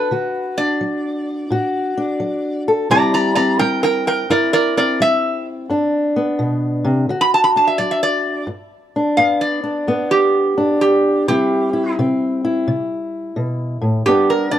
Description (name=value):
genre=acoustic country blues, solo or duo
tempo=86 BPM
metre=4/4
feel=swing 66% on 8ths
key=G major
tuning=A4 = 440 Hz
part: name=metal-body resonator slide guitar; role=melody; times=0.0-14.6 s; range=G4 to B5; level=-16 LUFS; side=right 2 dB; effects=none
part: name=fingerpicked old ladder-braced acoustic guitar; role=accompaniment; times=0.0-14.6 s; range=G2 to A4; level=-18 LUFS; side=left 1 dB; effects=none
room=small room ambience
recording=dry, close 1970s-style studio recording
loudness=-15 LUFS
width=side -11 dB against mid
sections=0.0-8.5 A section; 8.5-14.6 B section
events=resonator guitar played with a steel bar solo 0.0-8.5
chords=0.0 D; 2.9 C; 5.7 G; 7.1 D; 8.5 G; 11.3 C; 14.1 G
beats=| 0.11 0.81 1.51 2.21 | 2.90 3.60 4.30 5.00 | 5.69 6.39 7.09 7.78 | 8.48 9.18 9.88 10.57 | 11.27 11.97 12.67 13.37 | 14.06